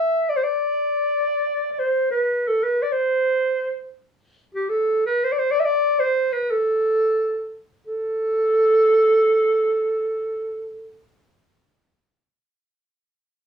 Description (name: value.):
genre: Turkish makam ensemble.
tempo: free time.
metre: none.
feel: none.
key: A makam huseyni.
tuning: A4 = 440 Hz.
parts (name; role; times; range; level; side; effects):
warm clarinet; solo; 0.0-11.0 s; G4 to E5; -18 LUFS; right 1 dB; none.
room: light reverb.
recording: small room ambience.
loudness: -18 LUFS.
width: side -8 dB against mid.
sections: 0.0-7.9 A section; 7.9-10.3 B section.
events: none.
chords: none.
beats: free time.